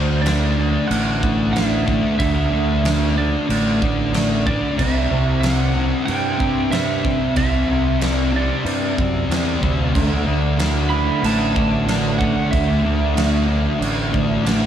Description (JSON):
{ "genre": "rock, shoegaze and dream pop", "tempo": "93 BPM", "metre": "4/4", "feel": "straight", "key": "unclear", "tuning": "A4 = 440 Hz", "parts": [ { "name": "lightly driven lead guitar", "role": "melody", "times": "0.0-14.4 s", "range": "C5 to B5", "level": "-26 LUFS", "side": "right 5 dB", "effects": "tape echo" }, { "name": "thick fuzz guitar", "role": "riff", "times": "0.0-14.7 s", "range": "C3 to D4", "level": "-20 LUFS", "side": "left 2 dB", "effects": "distortion, analog chorus" }, { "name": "growling fingered electric bass", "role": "bass", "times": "0.0-14.7 s", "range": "A1 to G2", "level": "-21 LUFS", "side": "right 1 dB", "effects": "overdrive" }, { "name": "huge arena drum kit", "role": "drums", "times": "0.3-14.6 s", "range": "crash cymbal, kick drum, snare drum", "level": "-24 LUFS", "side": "right 2 dB", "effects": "none" }, { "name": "twangy electric guitar", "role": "riff", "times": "9.9-14.7 s", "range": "D3 to E4", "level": "-29 LUFS", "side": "right 12 dB", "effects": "reverse reverb" } ], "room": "light reverb, small room ambience", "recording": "none", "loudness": "-16 LUFS", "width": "side -9 dB against mid", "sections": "0.0-14.7 A section", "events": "none", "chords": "0.0 Dsus2; 4.8 Cadd9; 9.9 Dadd9" }